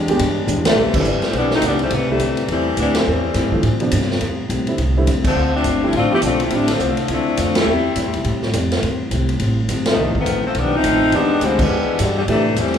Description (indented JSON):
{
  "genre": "jazz, big band swing",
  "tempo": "208 BPM",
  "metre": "4/4",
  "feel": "swing 61% on 8ths",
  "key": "A minor",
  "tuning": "A4 = 440 Hz",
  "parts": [
    { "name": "hollow-body jazz guitar", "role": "accompaniment", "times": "0.0-12.8 s", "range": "F2 to G4", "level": "-24 LUFS", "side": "left 2 dB", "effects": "none" },
    { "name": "muted trombone section", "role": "sustained chords", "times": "0.0-0.8 s", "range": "E3 to G4", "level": "-32 LUFS", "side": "left 2 dB", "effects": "none" },
    { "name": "upright bass", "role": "bass", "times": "0.0-12.8 s", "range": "E1 to A2", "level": "-22 LUFS", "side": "right 1 dB", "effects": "none" },
    { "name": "warm baby grand piano", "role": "accompaniment", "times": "0.1-6.7, 11.1-12.4 s", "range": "C3 to G4", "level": "-24 LUFS", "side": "right 2 dB", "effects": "none" },
    { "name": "swinging big-band drum kit", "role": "drums", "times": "0.1-12.8 s", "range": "crash cymbal, hi-hat, kick drum, ride cymbal, snare drum", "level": "-22 LUFS", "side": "right 1 dB", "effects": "none" },
    { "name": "clear saxophone section", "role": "melody", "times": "0.7-12.8 s", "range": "B2 to G4", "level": "-18 LUFS", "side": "left 2 dB", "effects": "none" }
  ],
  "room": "wet recital hall reverb, RT60 1.7 s",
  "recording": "recorded in a church or concert hall",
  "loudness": "-15 LUFS",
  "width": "side -8 dB against mid",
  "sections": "0.8-12.8 A section",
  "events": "drum fill 0.5; band accent 0.6, 0.9, 2.9, 5.2, 7.5, 9.8, 11.6",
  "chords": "0.0 E7#9; 0.8 Am7; 5.4 Dm7; 7.7 Am7; 10.0 F7; 11.1 E7#9"
}